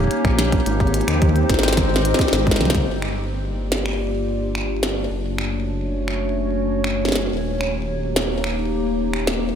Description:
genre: IDM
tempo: 108 BPM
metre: 4/4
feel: straight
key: unclear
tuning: A4 = 439 Hz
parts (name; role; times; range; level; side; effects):
- warbly tape-like pad; sustained chords; 0.0-9.6 s; Ab3 to D5; -23 LUFS; left 1 dB; chorus, built-in reverb, sidechain pumping
- dark detuned saw bass; bass; 0.0-9.5 s; Eb1 to Eb2; -24 LUFS; equal; none
- electronic kick drum; drums; 0.0-2.9 s; none; -22 LUFS; equal; none
- glitchy drum kit; drums; 0.1-9.4 s; finger snaps, hi-hat, snare drum, toms; -23 LUFS; equal; ping-pong delay
room: light reverb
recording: none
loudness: -18 LUFS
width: side -8 dB against mid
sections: 0.0-2.9 A section; 2.9-9.6 B section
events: drum fill 1.8-2.9; filter sweep on ambient pad 2.9-9.6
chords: 0.0 Eb7; 0.7 Abmaj7; 2.9 Gm7; 5.1 Dmaj7/F#; 7.3 Eb7

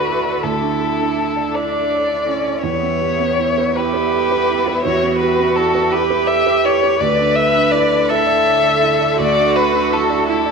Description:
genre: neoclassical piano and strings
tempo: 55 BPM (dotted quarters)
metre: 6/8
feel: rubato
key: D major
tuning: A4 = 440 Hz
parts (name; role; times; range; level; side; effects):
- muted violin; melody; 0.0-10.5 s; A4 to E5; -17 LUFS; left 6 dB; none
- muted cello; second line; 0.0-10.5 s; B3 to B4; -19 LUFS; right 6 dB; slapback echo
- felt-muted upright piano; accompaniment; 0.0-10.5 s; D2 to D5; -22 LUFS; right 8 dB; none
- muted studio string section; sustained chords; 0.0-10.5 s; D3 to E5; -26 LUFS; left 2 dB; none
room: wet echo chamber reverb, RT60 1.6 s, studio reverb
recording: 1960s-style stereo with parts hard left and right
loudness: -14 LUFS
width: side -5 dB against mid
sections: 0.0-10.5 A section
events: none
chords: 0.0 Dsus2; 2.6 Em; 7.0 Dsus2

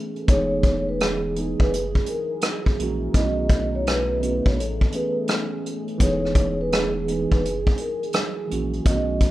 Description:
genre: lo-fi hip hop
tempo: 84 BPM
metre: 4/4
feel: swing 66% on 16ths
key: E major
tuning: A4 = 439 Hz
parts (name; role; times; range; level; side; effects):
- mellow tine electric piano; accompaniment; 0.0-9.3 s; D#3 to B4; -27 LUFS; right 2 dB; slow stereo tremolo, cassette tape, low-pass filter
- deep dark ambient pad; sustained chords; 0.0-9.3 s; E3 to A#4; -32 LUFS; right 2 dB; chorus, built-in reverb, low-pass filter
- vintage brush drum kit; drums; 0.2-9.3 s; hi-hat, kick drum, rim click; -21 LUFS; equal; vintage 12-bit sampler grit
- vibraphone with soft mallets; melody; 0.3-9.3 s; G#4 to D#5; -27 LUFS; equal; low-pass filter, plate reverb
- warm sub bass; bass; 0.3-9.3 s; D#1 to B1; -30 LUFS; equal; none
room: light reverb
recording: rough home demo mix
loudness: -20 LUFS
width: side -16 dB against mid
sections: 0.0-9.3 A section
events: none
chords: 0.3 Emaj7; 1.7 F#9; 3.1 B9; 4.6 Amaj9; 6.0 Emaj7; 7.4 F#9

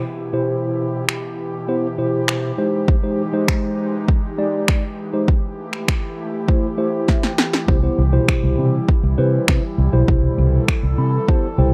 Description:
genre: dance-pop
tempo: 100 BPM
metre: 4/4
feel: straight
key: C major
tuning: A4 = 442 Hz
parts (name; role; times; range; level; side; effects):
- mellow tine electric piano; accompaniment; 0.0-11.7 s; B2 to B5; -23 LUFS; equal; sidechain pumping
- airy breathy pad; sustained chords; 0.0-11.7 s; B2 to A4; -29 LUFS; equal; chorus, sidechain pumping
- deep house drum kit; drums; 1.1-11.4 s; finger snaps, kick drum, snare drum; -20 LUFS; equal; overdrive
- vintage muted fingered electric bass; bass; 7.7-11.7 s; B1 to C3; -19 LUFS; equal; sidechain pumping
room: little or no reverb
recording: dry, close 1970s-style studio recording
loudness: -19 LUFS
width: mono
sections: 0.0-11.7 A section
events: tine electric piano fill 6.8-7.7, 10.7-11.7; drum fill 7.1-7.7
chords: 0.0 Cmaj7; 2.6 Abmaj7; 5.3 Am7; 7.7 Cmaj7

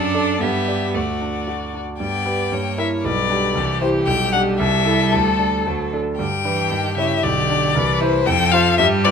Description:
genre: quick classical-period movement for piano quartet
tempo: 115 BPM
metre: 2/4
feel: straight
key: G major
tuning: A4 = 440 Hz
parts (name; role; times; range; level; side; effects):
- rich violin; melody; 0.0-9.1 s; A4 to G5; -20 LUFS; left 8 dB; none
- clear cello; second line; 0.0-9.1 s; Db3 to D4; -24 LUFS; right 6 dB; none
- rich violin; second line; 0.0-9.1 s; F#4 to D5; -27 LUFS; left 5 dB; none
- clear concert grand piano; accompaniment; 0.0-9.1 s; B1 to D5; -21 LUFS; right 2 dB; none
room: light reverb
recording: minimal, uncompressed stereo recording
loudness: -17 LUFS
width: side -6 dB against mid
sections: 0.0-2.0 A section; 2.0-9.1 B section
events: none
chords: 0.4 G; 0.9 D; 2.0 G; 2.5 Gdim7; 3.0 G/B; 3.6 C; 4.1 G/B; 4.6 Am7/C; 5.1 Dsus4; 6.2 G; 6.7 Eb7b9/G; 7.2 G/B; 7.7 C; 8.3 F

